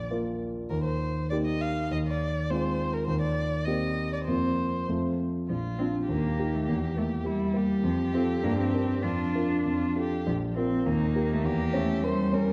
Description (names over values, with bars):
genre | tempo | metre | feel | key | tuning
quick classical-period movement for piano trio | 100 BPM | 2/4 | rubato | Bb major from 3.1 s | A4 = 438 Hz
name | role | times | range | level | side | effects
rich violin | melody | 0.0-12.5 s | Eb4 to F5 | -37 LUFS | equal | none
warm grand piano | accompaniment | 0.0-12.5 s | Bb1 to Bb4 | -30 LUFS | equal | none
rich cello | second line | 5.5-12.5 s | F3 to D4 | -31 LUFS | equal | none
room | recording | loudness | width
wet recital hall reverb, RT60 1.7 s | dark, warm production | -28 LUFS | mono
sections
0.0-5.5 A section; 5.5-12.5 B section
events
none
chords
0.0 Bb5; 0.7 Eb; 1.9 Fm7/Eb; 3.1 Cm7/Eb; 4.3 Fsus4; 4.9 F; 5.5 Bb; 6.1 Eb; 6.7 Edim; 7.8 F; 8.4 Gm; 9.0 Bb/F; 9.7 F; 10.3 Bb5; 10.9 Eb; 11.5 Edim7